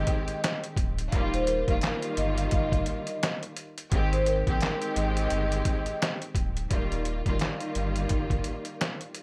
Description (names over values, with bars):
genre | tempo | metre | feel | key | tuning
hip hop, boom-bap hip-hop | 86 BPM | 4/4 | swing 60% on 16ths | Eb major | A4 = 440 Hz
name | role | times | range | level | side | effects
vibraphone with soft mallets | melody | 0.0-6.2 s | Bb4 to Eb5 | -34 LUFS | equal | high-pass filter, low-pass filter, digital delay
warm studio string section | accompaniment | 0.0-9.2 s | Eb3 to G4 | -34 LUFS | equal | high-pass filter, low-pass filter
warm sub bass | bass | 0.0-8.4 s | D1 to Bb1 | -33 LUFS | equal | none
trip hop sampler-style drum kit | drums | 0.1-9.2 s | handclaps, hi-hat, kick drum, snare drum | -31 LUFS | equal | none
room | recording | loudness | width
light reverb | none | -28 LUFS | mono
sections
0.0-6.7 A section; 6.7-9.2 B section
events
none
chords
0.0 Abmaj7; 1.1 Ebadd9; 3.9 Abmaj7; 6.7 Ebadd9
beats
0.43 | 1.12 1.82 2.52 3.22 | 3.92 4.61 5.31 6.01 | 6.71 7.40 8.10 8.80